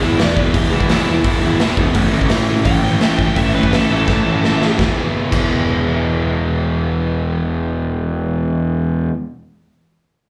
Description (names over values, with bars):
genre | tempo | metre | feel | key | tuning
punk rock | 170 BPM | 4/4 | straight | E major | A4 = 440 Hz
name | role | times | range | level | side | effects
bluesy overdriven lead guitar | melody | 0.0-4.8 s | E4 to G5 | -25 LUFS | equal | distortion, slapback echo, tape echo
overdriven semi-hollow guitar | riff | 0.0-9.1 s | E2 to A3 | -24 LUFS | equal | slapback echo
sludgy distorted guitar | riff | 0.0-9.1 s | A2 to E4 | -22 LUFS | equal | overdrive, slapback echo
fuzz picked electric bass | bass | 0.0-9.1 s | E1 to A1 | -24 LUFS | equal | overdrive
raw garage drum kit | drums | 0.2-5.4 s | crash cymbal, hi-hat, kick drum, snare drum | -21 LUFS | equal | none
room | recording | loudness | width
small room ambience | live gig heard through the venue's PA, club reverb | -17 LUFS | mono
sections
0.0-4.8 A section; 4.8-7.6 B section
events
lead electric guitar solo 0.0-4.8; drum fill 4.1-4.8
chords
0.0 E; 2.0 A; 4.8 E